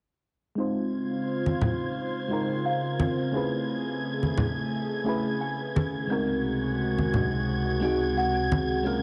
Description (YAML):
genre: sunset chillout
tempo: 87 BPM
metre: 4/4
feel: swing 56% on 16ths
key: Db major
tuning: A4 = 440 Hz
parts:
  - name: mellow FM electric piano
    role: accompaniment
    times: 0.6-9.0 s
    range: Ab3 to C5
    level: -34 LUFS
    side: equal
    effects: chorus, phaser, low-pass filter, digital delay, shimmer reverb
  - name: airy breathy pad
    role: sustained chords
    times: 0.6-9.0 s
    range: Db2 to F5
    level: -32 LUFS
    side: equal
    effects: chorus, vintage 12-bit sampler grit, shimmer reverb
  - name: kalimba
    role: arpeggios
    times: 0.6-9.0 s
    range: Bb3 to G#5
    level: -34 LUFS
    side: equal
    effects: low-pass filter, digital delay, shimmer reverb
  - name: wind-like tuned noise texture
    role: texture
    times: 1.0-9.0 s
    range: Ab6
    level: -39 LUFS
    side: equal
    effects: built-in reverb, shimmer reverb
  - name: congas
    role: percussion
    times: 1.5-8.7 s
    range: none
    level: -30 LUFS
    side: equal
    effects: none
room: wet recital hall reverb, RT60 1.2 s, small room ambience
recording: nothing above 10.9 kHz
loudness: -28 LUFS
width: mono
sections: 0.6-9.0 A section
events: filter sweep on FM electric piano 0.6-9.0; filter sweep on kalimba 0.6-9.0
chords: 0.6 Dbmaj7; 3.3 Amaj7/C#; 6.1 Ab7/Db